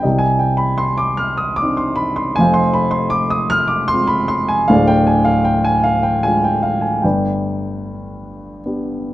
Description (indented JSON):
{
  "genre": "classical, lyrical solo piano",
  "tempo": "77 BPM",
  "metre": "3/4",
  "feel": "rubato",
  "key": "C harmonic minor",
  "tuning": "A4 = 442 Hz",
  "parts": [
    { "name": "dark baby grand piano", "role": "solo", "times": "0.0-9.1 s", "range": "D1 to F6", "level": "-14 LUFS", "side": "equal", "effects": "none" }
  ],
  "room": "light reverb",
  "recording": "close, detailed microphones",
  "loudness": "-14 LUFS",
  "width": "side -15 dB against mid",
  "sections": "0.0-9.1 A section",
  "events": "none",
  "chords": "0.0 Cmadd9; 2.4 Fm; 4.7 Ddim; 7.0 G",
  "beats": "| 0.04 0.83 1.62 | 2.39 3.15 3.92 | 4.70 5.47 6.24 | 7.04 7.84 8.65"
}